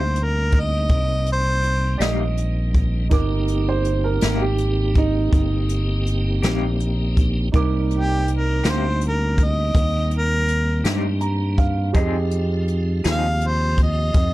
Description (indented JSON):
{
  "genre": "slow blues",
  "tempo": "54 BPM (dotted quarters)",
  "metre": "12/8",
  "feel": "straight",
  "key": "C minor",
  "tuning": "A4 = 440 Hz",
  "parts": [
    { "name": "warm harmonica", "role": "melody", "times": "0.0-14.3 s", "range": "G4 to F5", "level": "-24 LUFS", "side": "equal", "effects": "none" },
    { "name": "dark concert grand piano", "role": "accompaniment", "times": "0.0-14.3 s", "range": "Eb4 to D6", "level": "-29 LUFS", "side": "right 6 dB", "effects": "none" },
    { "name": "electric guitar through a small old amp", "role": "accompaniment", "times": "0.0-13.3 s", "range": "C3 to Ab4", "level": "-28 LUFS", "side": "left 4 dB", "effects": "tremolo" },
    { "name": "tonewheel organ", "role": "sustained chords", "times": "0.0-14.3 s", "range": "F3 to G4", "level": "-29 LUFS", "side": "equal", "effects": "slow rotary speaker, chorus vibrato" },
    { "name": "modern bright fingered electric bass", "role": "bass", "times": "0.0-14.3 s", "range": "G1 to G2", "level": "-21 LUFS", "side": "equal", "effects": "none" },
    { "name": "jazz brush drum kit", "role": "drums", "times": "0.2-14.3 s", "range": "hi-hat, kick drum, snare drum", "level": "-21 LUFS", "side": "equal", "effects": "none" },
    { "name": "clear upright piano", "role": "second line", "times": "2.0-7.1 s", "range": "Eb4 to Eb5", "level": "-27 LUFS", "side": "right 5 dB", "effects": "none" }
  ],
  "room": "little or no reverb",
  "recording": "dark, warm production",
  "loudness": "-18 LUFS",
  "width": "side -17 dB against mid",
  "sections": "0.0-14.3 A section",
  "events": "grand piano fill 10.8-11.9",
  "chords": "0.0 Cm7; 11.9 Fm7"
}